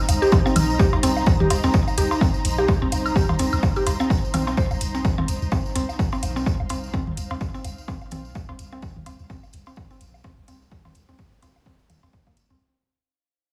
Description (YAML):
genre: minimal techno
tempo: 127 BPM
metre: 4/4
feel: swing 57% on 16ths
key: C minor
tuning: A4 = 441 Hz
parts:
  - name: ethereal airy pad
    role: texture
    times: 0.0-12.6 s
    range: Eb4 to Bb5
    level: -32 LUFS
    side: equal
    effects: ensemble chorus, built-in reverb, sidechain pumping
  - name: punchy sub bass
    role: bass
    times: 0.1-12.6 s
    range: Bb1 to C2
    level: -28 LUFS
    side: equal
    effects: sidechain pumping
  - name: electronic hi-hat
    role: drums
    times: 0.1-12.5 s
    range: none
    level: -32 LUFS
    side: equal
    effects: overdrive
  - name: electronic woodblock, cowbell and toms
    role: percussion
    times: 0.1-12.3 s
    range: none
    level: -30 LUFS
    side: equal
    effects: digital delay
  - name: tambourine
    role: percussion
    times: 0.1-12.6 s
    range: none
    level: -38 LUFS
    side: equal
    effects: none
  - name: mallet-like synth pluck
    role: riff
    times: 0.2-12.6 s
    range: Bb3 to C5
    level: -28 LUFS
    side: equal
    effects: chorus, cassette tape, sidechain pumping, digital delay
  - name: electronic kick drum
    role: drums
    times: 0.3-12.3 s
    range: none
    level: -24 LUFS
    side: equal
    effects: overdrive
room: light reverb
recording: small room ambience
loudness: -21 LUFS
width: mono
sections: 0.0-12.6 A section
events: fade-out on ambient pad 0.0-12.6; fade-out 0.0-12.6; filter sweep on synth arpeggio sound 0.0-12.6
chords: 0.0 Cm7